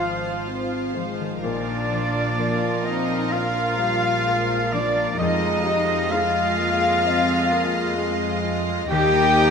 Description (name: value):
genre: cinematic, emotional film score for orchestra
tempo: 64 BPM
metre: 4/4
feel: rubato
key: unclear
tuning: A4 = 439 Hz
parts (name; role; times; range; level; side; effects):
- warm studio violin section; melody; 0.0-9.5 s; D5 to G5; -31 LUFS; left 2 dB; none
- bright oboe; second line; 0.0-9.5 s; D5 to G5; -26 LUFS; right 1 dB; none
- concert flute; second line; 0.0-9.5 s; D5 to G5; -29 LUFS; equal; none
- warm studio violin section; second line; 0.0-9.5 s; Bb4 to G5; -30 LUFS; equal; none
- bright concert grand piano; accompaniment; 0.0-9.5 s; Eb2 to Eb5; -31 LUFS; left 4 dB; none
- warm studio viola section; accompaniment; 0.0-9.5 s; F3 to F4; -30 LUFS; right 3 dB; none
- warm French horn section; sustained chords; 0.0-9.5 s; F3 to G4; -29 LUFS; left 3 dB; none
- concert harp; arpeggios; 0.0-9.5 s; Ab2 to Eb6; -31 LUFS; left 6 dB; none
- rich studio double bass section; bass; 0.0-9.5 s; Ab1 to F2; -30 LUFS; right 4 dB; none
- warm studio cello section; bass; 0.0-9.5 s; D4 to G4; -26 LUFS; left 1 dB; none
room: moderate scoring stage reverb, RT60 1.8 s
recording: minimal, uncompressed stereo recording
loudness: -19 LUFS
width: side -6 dB against mid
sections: 0.0-9.5 A section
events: none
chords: 0.0 Ab6; 1.4 Bb; 5.2 Fm7; 8.9 Ebadd9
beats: 0.49 | 1.44 2.38 3.33 4.26 | 5.19 6.12 7.05 7.98 | 8.90